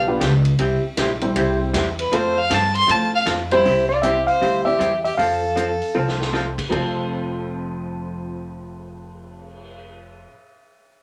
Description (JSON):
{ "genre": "country, western swing", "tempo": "157 BPM", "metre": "4/4", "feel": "swing 64% on 8ths", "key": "F major", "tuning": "A4 = 440 Hz", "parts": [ { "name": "vintage hollow-body jazz guitar", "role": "accompaniment", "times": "0.0-10.3 s", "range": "C3 to A4", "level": "-28 LUFS", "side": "equal", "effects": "none" }, { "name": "upright bass", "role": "bass", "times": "0.0-10.2 s", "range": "F1 to A2", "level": "-28 LUFS", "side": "equal", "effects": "none" }, { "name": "honky-tonk upright piano", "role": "accompaniment", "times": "0.1-10.3 s", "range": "F2 to D5", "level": "-29 LUFS", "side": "equal", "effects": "none" }, { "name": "swinging big-band drum kit", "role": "drums", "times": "0.2-9.7 s", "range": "crash cymbal, cymbal swell, hi-hat, kick drum, ride cymbal, rim click, snare drum", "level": "-33 LUFS", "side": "equal", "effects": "none" }, { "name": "clear fiddle", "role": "second line", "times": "2.0-6.3 s", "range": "E4 to C6", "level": "-24 LUFS", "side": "equal", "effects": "none" }, { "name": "clean lap steel guitar", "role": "melody", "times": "3.5-6.3 s", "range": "C5 to F5", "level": "-22 LUFS", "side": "equal", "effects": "none" } ], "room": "wet club reverb, RT60 0.6 s", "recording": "none", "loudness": "-20 LUFS", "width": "mono", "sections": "0.0-3.7 A section; 3.7-6.7 B section; 6.7-9.8 C section", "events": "fiddle solo 0.0-3.7; drum fill 5.9-6.3", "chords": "0.0 G7; 0.6 C; 2.1 F; 3.7 C; 5.2 F" }